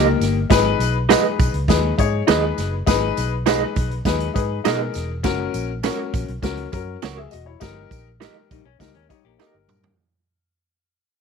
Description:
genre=uptempo 1960s-style soul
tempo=101 BPM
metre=4/4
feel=straight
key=G# minor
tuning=A4 = 440 Hz
part: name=warm concert grand piano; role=accompaniment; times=0.0-9.9 s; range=A#3 to F#5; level=-23 LUFS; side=left 15 dB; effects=none
part: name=electric guitar through a small old amp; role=stabs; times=0.0-9.5 s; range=C#4 to D#5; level=-19 LUFS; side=right 14 dB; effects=tremolo
part: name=vintage muted fingered electric bass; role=bass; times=0.0-9.9 s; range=E1 to B2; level=-25 LUFS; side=equal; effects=none
part: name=swinging big-band drum kit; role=drums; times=0.2-10.0 s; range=hi-hat, kick drum, snare drum, toms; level=-22 LUFS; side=right 4 dB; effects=none
part: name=tambourine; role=percussion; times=0.2-9.8 s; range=none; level=-34 LUFS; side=right 18 dB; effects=none
part: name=vintage hollow-body jazz guitar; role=riff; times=8.5-10.0 s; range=G3 to G4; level=-56 LUFS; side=left 19 dB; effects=none
room=small room ambience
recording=1960s-style stereo with parts hard left and right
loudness=-18 LUFS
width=side -6 dB against mid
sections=0.5-10.0 A section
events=fade-out 0.5-10.0; drum fill 9.4-10.0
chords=0.0 D#; 0.5 G#m; 7.6 D#/G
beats=| 0.50 1.09 1.69 2.28 | 2.87 3.47 4.06 4.65 | 5.24 5.84 6.43 7.02 | 7.62 8.21 8.80 9.39

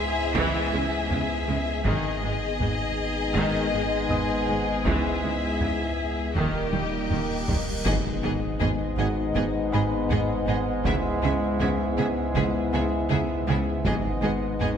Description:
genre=cinematic, hybrid orchestral and electronic film score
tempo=80 BPM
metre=4/4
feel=straight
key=G# minor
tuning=A4 = 440 Hz
part: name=rich symphonic violin section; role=melody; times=0.0-14.7 s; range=D#5 to E5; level=-34 LUFS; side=left 4 dB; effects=none
part: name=rich studio violin section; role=second line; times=0.0-14.7 s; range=G4 to G#4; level=-32 LUFS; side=left 3 dB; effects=none
part: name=clear trombone section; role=sustained chords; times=0.0-14.8 s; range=G#2 to G#3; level=-33 LUFS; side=right 2 dB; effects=none
part: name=hollow soft pad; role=sustained chords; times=0.0-14.8 s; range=G3 to E5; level=-33 LUFS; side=left 1 dB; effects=chorus
part: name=mellow French horn section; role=sustained chords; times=0.0-14.8 s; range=A#3 to E4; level=-31 LUFS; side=left 4 dB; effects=none
part: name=saturated sub bass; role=bass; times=0.0-14.8 s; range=D#1 to C#2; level=-32 LUFS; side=equal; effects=none
part: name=warm grand piano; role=texture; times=0.0-14.8 s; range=F#4 to G#6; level=-41 LUFS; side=left 2 dB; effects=none
part: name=warm symphonic double bass section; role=bass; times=0.3-14.7 s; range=G#1 to D#2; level=-32 LUFS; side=right 4 dB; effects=none
part: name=bright symphonic viola section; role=accompaniment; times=0.4-14.7 s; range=D#3 to B3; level=-34 LUFS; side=right 1 dB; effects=none
part: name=rich symphonic cello section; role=bass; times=0.4-14.7 s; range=G#2 to D#3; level=-32 LUFS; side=right 4 dB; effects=none
part: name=taiko ensemble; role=drums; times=0.4-14.8 s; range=none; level=-32 LUFS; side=equal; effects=none
part: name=cymbal swell and impact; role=sound effects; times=6.8-10.9 s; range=none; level=-36 LUFS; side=equal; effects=none
room=wet concert hall reverb, RT60 2.4 s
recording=none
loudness=-23 LUFS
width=side -8 dB against mid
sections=0.0-7.9 A section; 7.9-14.8 B section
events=drum fill 6.7-7.9; cymbal swell 6.8-7.9; impact 7.9-10.9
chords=0.0 C#m7; 1.9 G#m; 4.9 C#m7; 6.4 D#; 7.9 G#m; 10.9 C#m7; 13.9 G#m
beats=0.36 1.11 | 1.86 2.61 3.36 4.11 | 4.86 5.61 6.36 7.11 | 7.86 8.61 9.36 10.11 | 10.86 11.61 12.36 13.11 | 13.86 14.61

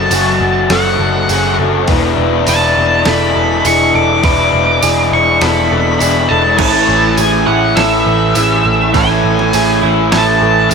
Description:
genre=rock, shoegaze and dream pop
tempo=102 BPM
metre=4/4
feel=straight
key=A major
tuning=A4 = 441 Hz
part: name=octave-fuzz lead guitar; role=melody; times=0.0-10.7 s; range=E5 to D6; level=-15 LUFS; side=right 1 dB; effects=distortion, tape echo
part: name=direct-recorded clean electric guitar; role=arpeggios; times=0.0-10.7 s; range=F#4 to B4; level=-19 LUFS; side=right 16 dB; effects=wide subtle chorus, tape echo
part: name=overdriven semi-hollow guitar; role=riff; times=0.0-10.7 s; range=E2 to F#4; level=-14 LUFS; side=left 7 dB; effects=lush chorus
part: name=vintage muted picked electric bass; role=bass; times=0.0-10.7 s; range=E1 to A1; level=-18 LUFS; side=equal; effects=none
part: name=clean 12-bit digital drum machine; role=drums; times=0.1-10.7 s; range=crash cymbal, hi-hat, kick drum, snare drum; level=-19 LUFS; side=equal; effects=none
part: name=tambourine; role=percussion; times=0.1-10.7 s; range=none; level=-24 LUFS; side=right 20 dB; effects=none
part: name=direct-recorded clean electric guitar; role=riff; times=6.6-10.7 s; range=A2 to E4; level=-16 LUFS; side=right 14 dB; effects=reverse reverb
room=light reverb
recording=none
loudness=-9 LUFS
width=side -5 dB against mid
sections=0.0-10.7 A section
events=none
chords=0.0 F#m; 1.9 E7sus4; 6.6 Amaj7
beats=0.11 0.70 1.29 | 1.88 2.47 3.06 3.65 | 4.24 4.83 5.42 6.01 | 6.60 7.19 7.78 8.37 | 8.95 9.54 10.13 10.72

